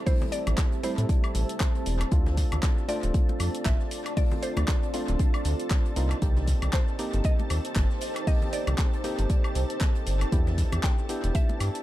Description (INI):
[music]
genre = deep house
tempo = 117 BPM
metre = 4/4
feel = swing 57% on 16ths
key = unclear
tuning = A4 = 440 Hz
[part]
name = mallet-like synth pluck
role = melody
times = 0.0-11.8 s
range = C5 to G5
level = -37 LUFS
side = equal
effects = chorus, tape echo
[part]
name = deep dark ambient pad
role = sustained chords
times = 0.0-11.8 s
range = Bb3 to E5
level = -38 LUFS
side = right 1 dB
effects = chorus, built-in reverb, sidechain pumping
[part]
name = percussive organ stab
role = stabs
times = 0.0-11.8 s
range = G3 to G4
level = -35 LUFS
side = equal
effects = chorus, sidechain pumping, analog delay
[part]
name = analog string pad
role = texture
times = 0.0-11.8 s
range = A4 to A5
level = -43 LUFS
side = equal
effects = ensemble chorus
[part]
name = granular cloud pad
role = texture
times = 0.0-11.8 s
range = Eb4 to C6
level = -40 LUFS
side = right 1 dB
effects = built-in reverb, sidechain pumping
[part]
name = deep house drum kit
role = drums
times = 0.1-11.8 s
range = handclaps, hi-hat, shaker, woodblock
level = -36 LUFS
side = left 1 dB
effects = analog delay
[part]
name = electronic kick drum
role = drums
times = 0.1-11.5 s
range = none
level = -25 LUFS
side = equal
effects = none
[part]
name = open jazz drum kit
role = drums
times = 0.1-11.7 s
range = hi-hat, snare drum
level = -46 LUFS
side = left 2 dB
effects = none
[part]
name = congas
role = percussion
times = 0.2-11.6 s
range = none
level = -41 LUFS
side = left 2 dB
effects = none
[part]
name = round analog bass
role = bass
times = 0.5-11.7 s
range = D1 to A2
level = -26 LUFS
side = equal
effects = sidechain pumping
[sound]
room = light reverb, digital ambience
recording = echo-heavy mix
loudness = -24 LUFS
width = side -15 dB against mid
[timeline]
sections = 0.0-11.8 A section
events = none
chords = 0.0 Am7; 2.1 Dm7; 6.0 Cm7; 10.3 Em7